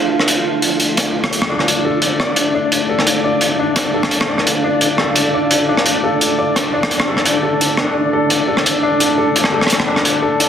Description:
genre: half-time drum and bass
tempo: 172 BPM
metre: 4/4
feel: swing 54% on 16ths, half-time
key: D minor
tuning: A4 = 440 Hz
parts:
  - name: deep dark ambient pad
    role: sustained chords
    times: 0.0-10.5 s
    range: D4 to A5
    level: -20 LUFS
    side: right 1 dB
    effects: chorus, built-in reverb
  - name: flickering grainy texture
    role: texture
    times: 0.0-10.5 s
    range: D4 to F4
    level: -22 LUFS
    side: left 1 dB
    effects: built-in reverb
  - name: crunchy breakbeat drum kit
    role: drums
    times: 0.2-10.5 s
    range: hi-hat, rim click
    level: -16 LUFS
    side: equal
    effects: soft clipping on snare
  - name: felt-muted upright piano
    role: arpeggios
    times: 1.5-10.5 s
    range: D4 to D5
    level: -19 LUFS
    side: left 2 dB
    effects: digital delay
room: wet echo chamber reverb, RT60 1.7 s, small room ambience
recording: dense, heavily limited modern master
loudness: -13 LUFS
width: side -8 dB against mid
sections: 0.0-10.5 A section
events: none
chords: 0.0 Dm

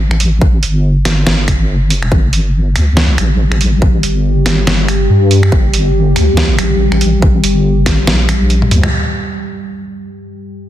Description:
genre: deep dubstep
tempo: 141 BPM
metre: 4/4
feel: swing 57% on 16ths, half-time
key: G minor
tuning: A4 = 440 Hz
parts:
  - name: deep soft wobble bass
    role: bass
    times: 0.0-8.9 s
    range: G1 to G2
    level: -12 LUFS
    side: equal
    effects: chorus
  - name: trip hop sampler-style drum kit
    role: drums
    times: 0.1-8.9 s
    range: finger snaps, hi-hat, snare drum, toms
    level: -16 LUFS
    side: right 1 dB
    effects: soft clipping on snare, studio reverb
  - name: electronic kick drum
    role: drums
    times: 0.4-8.0 s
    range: none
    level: -12 LUFS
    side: equal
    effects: overdrive, studio reverb
  - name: deep dark ambient pad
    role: sustained chords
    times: 3.1-10.7 s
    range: G3 to G4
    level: -18 LUFS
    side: left 2 dB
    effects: chorus, built-in reverb
room: light reverb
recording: dense, heavily limited modern master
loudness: -10 LUFS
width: side -12 dB against mid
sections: 0.0-8.9 A section; 8.9-10.7 B section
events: drum fill 8.6-8.9; band accent 8.8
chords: 0.0 Gsus2; 8.9 G5

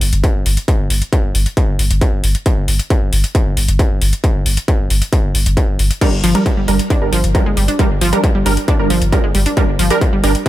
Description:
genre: driving peak-time techno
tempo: 135 BPM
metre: 4/4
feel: straight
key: G minor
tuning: A4 = 440 Hz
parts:
  - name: saturated sub bass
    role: bass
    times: 0.0-10.3 s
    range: G1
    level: -17 LUFS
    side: equal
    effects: tube saturation, sidechain pumping, low-pass filter
  - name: techno drum kit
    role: drums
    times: 0.0-10.5 s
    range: crash cymbal, hi-hat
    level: -22 LUFS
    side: left 2 dB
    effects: sidechain pumping on hats, studio reverb, sidechain pumping on cymbals
  - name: electronic kick drum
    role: drums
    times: 0.2-10.5 s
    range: none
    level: -15 LUFS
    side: equal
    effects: distortion, studio reverb
  - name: wide unison pluck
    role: riff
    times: 6.0-10.5 s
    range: F3 to D4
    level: -19 LUFS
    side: equal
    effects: tube saturation, cassette tape, sidechain pumping, dub echo
  - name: rave stab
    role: stabs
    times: 6.0-10.3 s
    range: G3 to Bb4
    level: -19 LUFS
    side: right 4 dB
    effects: chorus, built-in reverb, sidechain pumping, digital delay
room: little or no reverb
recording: none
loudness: -12 LUFS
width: side -14 dB against mid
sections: 0.0-10.5 A section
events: none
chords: 0.0 Gm

